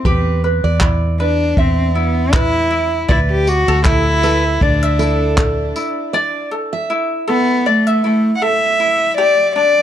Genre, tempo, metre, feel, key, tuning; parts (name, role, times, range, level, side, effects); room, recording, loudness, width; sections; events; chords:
acoustic pop; 79 BPM; 4/4; swing 55% on 16ths; A4 = 439 Hz
ukulele; accompaniment; 0.0-9.8 s; C4 to E5; -20 LUFS; right 1 dB
picked steel-string acoustic guitar; arpeggios; 0.1-7.2 s; A4 to E5; -24 LUFS; right 4 dB
vintage muted fingered electric bass; bass; 0.1-5.7 s; D2 to E2; -17 LUFS; equal
vintage brush drum kit; drums; 0.1-6.0 s; handclaps, kick drum, tambourine; -17 LUFS; equal
warm cello; melody; 1.2-9.8 s; A3 to F#5; -16 LUFS; left 1 dB; digital delay
light reverb; dark, warm production; -13 LUFS; side -10 dB against mid
0.0-9.2 A section
0.1 Em; 3.1 Dsus2; 9.2 G5